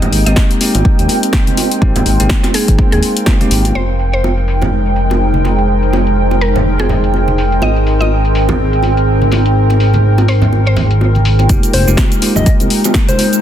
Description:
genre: deep house.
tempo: 124 BPM.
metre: 4/4.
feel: swing 58% on 16ths.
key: F minor.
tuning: A4 = 440 Hz.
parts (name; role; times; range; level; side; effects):
mallet-like synth pluck; melody; 0.0-11.4 s; Ab4 to Eb5; -22 LUFS; left 1 dB; chorus, cassette tape, dub echo.
deep dark ambient pad; sustained chords; 0.0-13.4 s; Ab3 to G5; -20 LUFS; equal; chorus, built-in reverb, sidechain pumping.
bell-like tine electric piano; stabs; 0.0-3.7, 11.5-13.4 s; Ab3 to Ab4; -18 LUFS; equal; sidechain pumping, dub echo.
punchy analog drum machine; drums; 0.0-13.4 s; cabasa, hi-hat, snare drum; -20 LUFS; left 2 dB; overdrive, low-pass filter on hats, low-pass filter on snare, low-pass filter on perc.
congas and bongos; percussion; 0.0-13.3 s; none; -20 LUFS; right 2 dB; sidechain pumping on perc.
airy breathy pad; texture; 0.0-13.4 s; Ab3 to G5; -19 LUFS; equal; chorus, sidechain pumping.
smooth synth bass; bass; 0.1-12.7 s; F1 to Eb2; -13 LUFS; equal; tube saturation, sidechain pumping.
electronic kick drum; drums; 0.4-3.4, 11.5-13.1 s; none; -12 LUFS; equal; none.
soft struck synth lead; melody; 11.7-13.4 s; C5 to Eb5; -19 LUFS; left 3 dB; chorus, dub echo.
room: light reverb.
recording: dense, heavily limited modern master.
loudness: -10 LUFS.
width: side -10 dB against mid.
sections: 0.0-3.8 A section; 3.8-11.5 B section; 11.5-13.4 C section.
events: filter sweep on tine electric piano 0.0-3.8; drop 11.5-13.4.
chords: 0.0 Abmaj9; 3.8 Fm11; 7.6 Abmaj9; 11.5 Fm11.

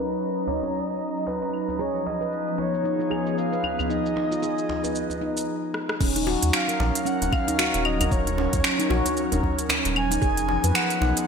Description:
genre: organic downtempo.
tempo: 114 BPM.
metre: 4/4.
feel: swing 58% on 16ths.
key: Eb minor.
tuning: A4 = 439 Hz.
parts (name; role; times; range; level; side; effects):
breathy flute-like synth lead; melody; 0.0-11.3 s; Cb5 to Ab5; -29 LUFS; left 1 dB; chorus, ping-pong delay.
airy breathy pad; sustained chords; 0.0-11.3 s; F3 to Bb5; -29 LUFS; right 1 dB; chorus, sidechain pumping.
organic electronic drum kit; drums; 0.1-11.3 s; claves, crash cymbal, finger snaps, hi-hat, rim click, shaker; -26 LUFS; equal; overdrive, gated reverb.
djembe; percussion; 0.5-11.1 s; none; -34 LUFS; right 1 dB; none.
handpan; arpeggios; 1.8-11.3 s; Db4 to Cb5; -28 LUFS; equal; ping-pong delay.
warm sub bass; bass; 6.0-11.1 s; Eb1 to F2; -26 LUFS; equal; tube saturation, sidechain pumping.
electronic kick drum; drums; 6.0-10.3 s; none; -25 LUFS; equal; overdrive.
room: moderate lush hall reverb, RT60 2.0 s.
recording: bright 1980s-style digital production, low-pass filter.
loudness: -22 LUFS.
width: side -6 dB against mid.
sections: 0.0-6.0 A section; 6.0-11.3 B section.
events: filter sweep on analog synth pad 0.0-6.0; filter sweep 0.0-6.0; drum fill 5.7.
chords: 0.0 Ebm7; 1.8 Fm7b5; 6.0 Ebm7; 10.2 Fm7b5.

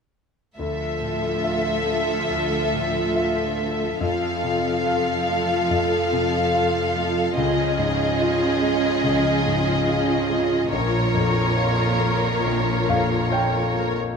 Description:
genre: cinematic, emotional film score for orchestra.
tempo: 70 BPM.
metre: 4/4.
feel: rubato.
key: D minor.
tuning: A4 = 440 Hz.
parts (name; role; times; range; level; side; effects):
warm symphonic violin section; second line; 0.6-13.9 s; G#4 to F5; -24 LUFS; left 2 dB; none.
clear concert grand piano; accompaniment; 0.6-14.2 s; Bb1 to G5; -24 LUFS; left 2 dB; none.
rich symphonic viola section; accompaniment; 0.6-13.9 s; F3 to F4; -26 LUFS; right 2 dB; none.
warm symphonic cello section; bass; 0.6-14.0 s; D2 to C#3; -28 LUFS; right 5 dB; none.
room: moderate scoring stage reverb, RT60 1.6 s.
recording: minimal, uncompressed stereo recording.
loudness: -19 LUFS.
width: side -5 dB against mid.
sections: 0.6-14.2 A section.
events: none.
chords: 0.6 Dmadd9; 4.0 F; 7.4 C#add9; 10.7 Bbm.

